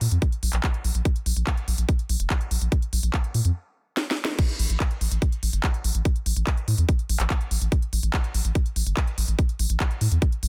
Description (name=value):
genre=psychedelic trance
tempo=144 BPM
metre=4/4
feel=straight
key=unclear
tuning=A4 = 439 Hz
part: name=round analog bass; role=bass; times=0.0-10.5 s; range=F1 to Bb2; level=-25 LUFS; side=equal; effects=none
part: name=techno drum kit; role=drums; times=0.0-10.5 s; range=crash cymbal, handclaps, hi-hat, snare drum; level=-32 LUFS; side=equal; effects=none
part: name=electronic kick drum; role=drums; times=0.2-10.3 s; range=none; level=-25 LUFS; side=equal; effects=none
room=little or no reverb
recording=dense, heavily limited modern master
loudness=-25 LUFS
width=mono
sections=0.0-4.4 A section; 4.4-10.5 B section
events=stop 3.6-4.4; drum fill 4.0-4.4; band accent 4.2; drop 4.4-10.5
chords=none